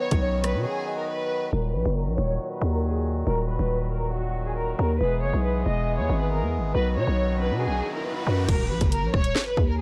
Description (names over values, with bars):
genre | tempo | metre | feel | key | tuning
hip hop, drill | 138 BPM | 4/4 | half-time | Eb phrygian | A4 = 440 Hz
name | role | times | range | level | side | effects
warm symphonic violin section | melody | 0.0-9.8 s | Gb4 to Eb5 | -31 LUFS | equal | low-pass filter
soft octave-layered synth lead | second line | 0.0-1.5 s | B4 to D#5 | -33 LUFS | equal | chorus, tape echo
accordion | sustained chords | 0.0-8.5 s | Bb2 to G#4 | -35 LUFS | equal | low-pass filter
growling 808-style bass | bass | 0.1-9.8 s | Eb1 to B2 | -27 LUFS | equal | none
drill drum kit | drums | 0.1-0.5, 8.5-9.7 s | crash cymbal, handclaps, hi-hat, kick drum, rim click, snare drum | -26 LUFS | equal | none
riser and impact | sound effects | 7.0-9.8 s | none | -38 LUFS | equal | none
room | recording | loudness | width
little or no reverb | none | -25 LUFS | mono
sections
0.0-1.5 A section; 1.5-8.5 B section; 8.5-9.8 C section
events
break 0.7-1.5; filter sweep 1.5-8.5; riser 7.0-8.5; impact 8.5-9.8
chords
0.0 B; 1.5 Ebm; 5.0 E; 6.7 B; 8.5 Ebm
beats
0.22 0.66 1.09 | 1.53 1.96 2.40 2.83 | 3.27 3.70 4.14 4.57 | 5.01 5.44 5.88 6.31 | 6.75 7.18 7.62 8.05 | 8.48 8.92 9.36 9.79